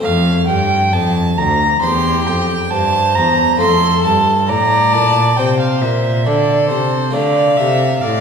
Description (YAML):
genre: classical, baroque-style sonata movement with continuo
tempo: 68 BPM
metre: 4/4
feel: straight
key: F major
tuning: A4 = 439 Hz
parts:
  - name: warm violin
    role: second line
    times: 0.0-8.2 s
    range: C5 to C6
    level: -15 LUFS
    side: right 3 dB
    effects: none
  - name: harpsichord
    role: accompaniment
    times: 0.0-8.2 s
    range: D2 to C5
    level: -21 LUFS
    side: left 2 dB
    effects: none
  - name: rich cello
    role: bass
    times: 0.0-8.2 s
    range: D2 to D3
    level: -18 LUFS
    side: equal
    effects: none
  - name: rich violin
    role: melody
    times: 1.8-8.2 s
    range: G4 to F5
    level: -20 LUFS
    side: left 5 dB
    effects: none
room: wet concert hall reverb, RT60 1.8 s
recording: recorded in a church or concert hall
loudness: -12 LUFS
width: side -6 dB against mid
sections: 0.0-8.2 A section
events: none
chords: 0.0 F; 1.8 C/E; 3.6 F; 7.1 Dm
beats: | 0.02 0.93 1.82 2.72 | 3.61 4.50 5.38 6.26 | 7.15 8.03